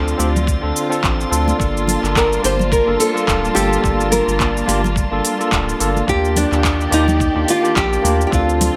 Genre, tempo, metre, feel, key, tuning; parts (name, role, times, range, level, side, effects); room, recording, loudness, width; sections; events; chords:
sunset chillout; 107 BPM; 4/4; swing 57% on 16ths; G minor; A4 = 440 Hz
bright tine electric piano; accompaniment; 0.0-8.7 s; Bb3 to A5; -23 LUFS; equal; tape echo
muted studio string section; sustained chords; 0.0-8.8 s; D3 to A5; -26 LUFS; equal
round analog bass; bass; 0.0-8.7 s; D1 to Eb2; -23 LUFS; equal
drifting glass-harmonics texture; texture; 0.0-8.8 s; D5; -35 LUFS; equal; chorus, built-in reverb
deep house drum kit; drums; 0.1-8.7 s; cabasa, handclaps, hi-hat; -25 LUFS; equal; overdrive
congas; percussion; 0.2-8.7 s; -28 LUFS; equal
electronic kick drum; drums; 0.5-8.5 s; -24 LUFS; equal
nylon-string guitar; melody; 2.2-8.8 s; D4 to C5; -21 LUFS; equal; digital delay
light reverb, digital ambience; -17 LUFS; mono
0.0-8.8 A section
0.0 Dm7; 1.6 Gm9; 6.1 Ebmaj7